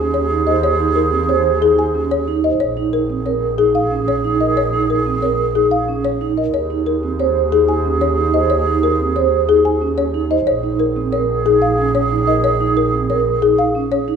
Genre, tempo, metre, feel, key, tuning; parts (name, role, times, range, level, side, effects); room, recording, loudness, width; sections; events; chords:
classical, minimalist pattern music; 183 BPM; 6/4; straight; A4 = 444 Hz
folk marimba with soft mallets; melody; 0.0-14.1 s; Ab4 to Ab5; -18 LUFS; left 7 dB
bright alto flute; second line; 0.0-14.2 s; Ab4; -21 LUFS; right 4 dB
vibraphone with soft mallets; arpeggios; 0.0-14.2 s; C4 to C5; -20 LUFS; right 7 dB
warm double bass; bass; 0.0-14.2 s; Bb1 to Eb2; -22 LUFS; right 2 dB
moderate recital hall reverb, RT60 1.7 s; minimal, uncompressed stereo recording; -14 LUFS; side -7 dB against mid
0.0-14.2 A section
0.0 Eb7sus4; 2.6 Bbm7; 6.5 Eb7sus4; 10.5 Bbm7